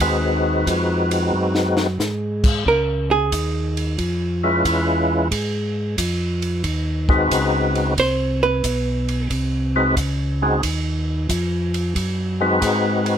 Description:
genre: soul jazz organ trio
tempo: 90 BPM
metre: 4/4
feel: swing 67% on 8ths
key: unclear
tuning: A4 = 441 Hz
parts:
  - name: percussive tonewheel organ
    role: melody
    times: 0.0-13.2 s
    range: Ab3 to B4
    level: -19 LUFS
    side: left 2 dB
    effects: slow rotary speaker, overdrive, chorus vibrato
  - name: tonewheel organ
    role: bass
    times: 0.0-13.2 s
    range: B1 to Ab2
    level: -22 LUFS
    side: equal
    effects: slow rotary speaker
  - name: compact cocktail drum kit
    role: drums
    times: 0.0-13.2 s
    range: crash cymbal, hi-hat, kick drum, ride cymbal, snare drum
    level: -26 LUFS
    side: equal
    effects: none
  - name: archtop guitar, miked and amplified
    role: accompaniment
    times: 2.7-4.0, 8.0-9.3 s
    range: Ab4 to C5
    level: -20 LUFS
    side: right 4 dB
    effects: none
room: light reverb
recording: close, detailed microphones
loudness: -18 LUFS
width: side -9 dB against mid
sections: 0.0-13.2 A section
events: hollow-body jazz guitar solo 0.0-13.2; drum fill 1.3-2.0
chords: 0.0 Ab7#9; 2.7 Db7#9; 5.3 Ab7#9

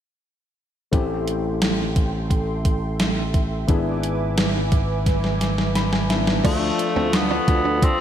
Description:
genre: 1980s-style pop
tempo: 87 BPM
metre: 4/4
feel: straight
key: A minor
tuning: A4 = 440 Hz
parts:
  - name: warm grand piano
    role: accompaniment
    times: 0.9-8.0 s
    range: F3 to B5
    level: -28 LUFS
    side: left 5 dB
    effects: none
  - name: brassy analog pad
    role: sustained chords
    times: 0.9-8.0 s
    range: F4 to D6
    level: -29 LUFS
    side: right 1 dB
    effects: chorus
  - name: slap bass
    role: bass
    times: 0.9-7.9 s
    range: G#1 to D2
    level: -25 LUFS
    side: equal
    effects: tube saturation
  - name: gated 80s digital drum machine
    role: drums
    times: 0.9-8.0 s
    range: crash cymbal, hi-hat, kick drum, snare drum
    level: -21 LUFS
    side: right 1 dB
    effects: gated reverb, gated reverb snare, overdrive
  - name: direct-recorded clean electric guitar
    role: riff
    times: 6.4-7.8 s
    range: C4 to D4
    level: -28 LUFS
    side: right 5 dB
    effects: ensemble chorus
  - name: raspy tenor saxophone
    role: melody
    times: 6.5-8.0 s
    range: A3 to C4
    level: -23 LUFS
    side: left 1 dB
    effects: none
room: moderate lush hall reverb, RT60 2.6 s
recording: bright 1980s-style digital production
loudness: -19 LUFS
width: side -10 dB against mid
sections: 0.9-6.4 A section; 6.4-8.0 B section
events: drum fill 5.1-6.4; grand piano fill 5.4-6.4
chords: 0.9 Am7; 3.7 E7/G#; 6.4 Dm

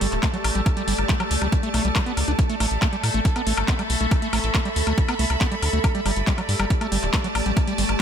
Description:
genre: psychedelic trance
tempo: 139 BPM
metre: 4/4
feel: straight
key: unclear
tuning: A4 = 442 Hz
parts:
  - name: overtone-sweeping drone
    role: sustained chords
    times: 0.0-8.0 s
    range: A3 to A4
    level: -28 LUFS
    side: left 1 dB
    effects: chorus, built-in reverb, sidechain pumping
  - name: overdriven acid bass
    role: riff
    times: 0.0-8.0 s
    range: F#3 to D4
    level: -29 LUFS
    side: right 1 dB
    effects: distortion, auto-pan, cassette tape, sidechain pumping, tape echo
  - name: round analog bass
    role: bass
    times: 0.0-8.0 s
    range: D1 to A2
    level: -24 LUFS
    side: equal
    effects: none
  - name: techno drum kit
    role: drums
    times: 0.0-8.0 s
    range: handclaps, hi-hat, woodblock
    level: -27 LUFS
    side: left 2 dB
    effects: none
  - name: rich studio string section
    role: texture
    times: 0.0-8.0 s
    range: G4 to B5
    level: -30 LUFS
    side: right 2 dB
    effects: sidechain pumping
  - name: electronic kick drum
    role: drums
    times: 0.2-8.0 s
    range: none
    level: -21 LUFS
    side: equal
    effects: none
  - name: resonant blip pluck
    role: second line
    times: 4.3-4.5 s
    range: C4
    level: -38 LUFS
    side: right 5 dB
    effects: none
room: light reverb, digital ambience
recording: none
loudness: -20 LUFS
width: side -8 dB against mid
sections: 0.0-8.0 A section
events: none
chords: 0.0 G5; 2.4 A5; 5.8 G5

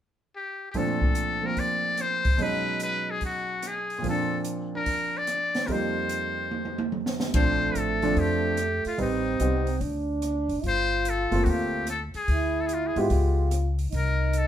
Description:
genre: jazz, small-group swing and bop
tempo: 146 BPM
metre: 4/4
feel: swing 66% on 8ths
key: Bb major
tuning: A4 = 440 Hz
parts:
  - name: trumpet with metal mute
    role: melody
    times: 0.4-14.5 s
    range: Eb4 to D5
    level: -28 LUFS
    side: left 2 dB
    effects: none
  - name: warm baby grand piano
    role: accompaniment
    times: 0.7-13.5 s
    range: F2 to Cb5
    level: -29 LUFS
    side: right 2 dB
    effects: none
  - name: open jazz drum kit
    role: drums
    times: 0.7-14.5 s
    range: hi-hat, kick drum, ride cymbal, rim click, snare drum, toms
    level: -30 LUFS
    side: equal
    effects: none
  - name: breathy trombone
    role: second line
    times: 7.3-14.5 s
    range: A3 to F4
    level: -29 LUFS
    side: right 2 dB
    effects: none
  - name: upright bass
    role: bass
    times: 7.3-14.5 s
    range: F#1 to Ab2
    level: -27 LUFS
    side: left 1 dB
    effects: none
room: moderate studio reverb, RT60 0.8 s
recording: band playing live in one room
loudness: -24 LUFS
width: side -10 dB against mid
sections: 0.8-7.3 A section; 7.3-14.5 B section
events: drum fill 6.5-7.3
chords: 0.0 N.C.; 0.8 Bbmaj7; 2.4 B69; 4.1 Bb; 5.7 F9sus4; 7.3 Bbmaj9; 9.0 Am7b5; 9.8 D; 10.6 Gm11; 12.3 Ddim; 13.1 Db7#11; 13.9 Cm7

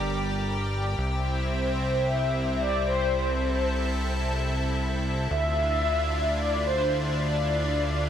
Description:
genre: synthwave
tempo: 111 BPM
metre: 4/4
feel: straight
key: unclear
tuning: A4 = 440 Hz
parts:
  - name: mellow synth brass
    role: melody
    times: 0.0-8.1 s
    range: C5 to E5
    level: -28 LUFS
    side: left 1 dB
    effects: chorus, digital delay
  - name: lush unison pad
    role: sustained chords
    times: 0.0-8.1 s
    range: C3 to D5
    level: -30 LUFS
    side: equal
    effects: chorus
  - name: fat analog bass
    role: bass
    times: 0.0-8.1 s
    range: G1 to D2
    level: -28 LUFS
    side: equal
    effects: none
room: moderate lush hall reverb, RT60 2.5 s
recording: bright 1980s-style digital production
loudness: -24 LUFS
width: side -9 dB against mid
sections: 0.0-8.1 A section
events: none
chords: 0.0 Gm; 1.0 C; 5.3 Dmadd9

